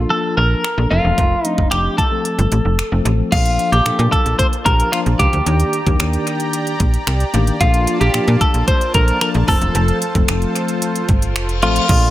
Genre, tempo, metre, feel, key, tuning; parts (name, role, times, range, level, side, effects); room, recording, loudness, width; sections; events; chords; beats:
dance-pop; 112 BPM; 4/4; straight; Bb major; A4 = 442 Hz
twelve-string electric guitar; melody; 0.0-12.1 s; F4 to C5; -18 LUFS; equal; spring reverb, analog delay
tine electric piano; accompaniment; 0.0-12.1 s; Eb3 to Bb5; -22 LUFS; left 3 dB; slow stereo tremolo, sidechain pumping, analog delay
slap-like FM bass; bass; 0.0-12.1 s; E1 to Bb2; -17 LUFS; equal; sidechain pumping
pop drum kit; drums; 0.6-12.0 s; crash cymbal, finger snaps, hi-hat, kick drum; -19 LUFS; equal
soft supersaw; sustained chords; 3.3-12.1 s; D3 to Bb5; -26 LUFS; right 1 dB; sidechain pumping
reverse cymbal and impact; sound effects; 11.2-12.1 s; -26 LUFS; left 5 dB
little or no reverb; echo-heavy mix; -14 LUFS; side -14 dB against mid
0.0-3.3 A section; 3.3-11.9 B section
kick muted 2.2-3.3; tine electric piano fill 6.5-7.6; reverse cymbal 11.2-11.9; impact 11.9
0.0 Bbmaj7; 0.9 F; 3.3 Bbmaj7; 5.5 Ebmaj7; 7.6 Bbmaj7; 9.5 F
0.11 0.64 | 1.18 1.72 2.25 2.79 | 3.32 3.86 4.39 4.93 | 5.46 6.00 6.54 7.07 | 7.61 8.14 8.68 9.21 | 9.75 10.29 10.82 11.36 | 11.89